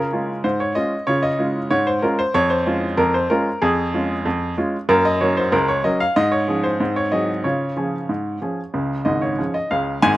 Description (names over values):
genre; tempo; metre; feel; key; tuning
ragtime piano; 94 BPM; 2/4; straight; Db major; A4 = 438 Hz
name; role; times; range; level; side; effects
bright upright piano; solo; 0.0-10.2 s; Ab1 to Ab5; -18 LUFS; equal; none
room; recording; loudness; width
little or no reverb; recorded outdoors, with no room sound; -18 LUFS; side -16 dB against mid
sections
0.0-10.0 A section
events
none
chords
0.0 Db; 2.4 Db/F; 4.9 Gb; 6.2 Db/Ab; 6.8 Ab7; 7.4 Db